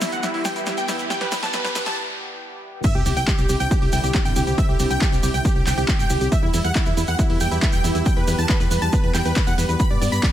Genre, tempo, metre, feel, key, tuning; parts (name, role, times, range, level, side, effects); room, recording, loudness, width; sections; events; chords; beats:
uplifting trance; 138 BPM; 4/4; straight; E minor; A4 = 438 Hz
supersaw chords; melody; 0.0-10.3 s; E4 to B5; -25 LUFS; equal; sidechain pumping, low-pass filter, tape echo
lush unison pad; sustained chords; 0.0-10.3 s; D3 to G4; -29 LUFS; equal; chorus, sidechain pumping
punchy analog drum machine; drums; 0.0-10.3 s; crash cymbal, handclaps, hi-hat, snare drum; -29 LUFS; equal
maracas; percussion; 0.0-10.3 s; -33 LUFS; right 3 dB
riser and sub drop; sound effects; 0.0-4.6 s; -30 LUFS; equal
wide unison pluck; second line; 2.8-10.3 s; E4 to B5; -31 LUFS; right 2 dB; auto-pan, sidechain pumping, tape echo
electronic kick drum; drums; 2.8-10.3 s; -20 LUFS; equal; overdrive
solid FM bass; bass; 3.0-10.2 s; E1 to G2; -23 LUFS; equal; sidechain pumping
digital ambience; high-pass filter; -18 LUFS; side -12 dB against mid
0.0-2.8 A section; 2.8-10.3 B section
build-up 0.0-2.8; drum fill 0.0-2.0; riser 0.0-2.0; break 2.0-2.8; drop 2.8-10.3; impact 2.8-4.6
0.0 Em; 2.8 Cadd9; 6.3 Em; 9.8 G
0.23 0.67 | 1.10 1.54 1.97 2.41 | 2.84 3.28 3.71 4.14 | 4.58 5.01 5.45 5.88 | 6.32 6.75 7.19 7.62 | 8.06 8.49 8.93 9.36 | 9.80 10.23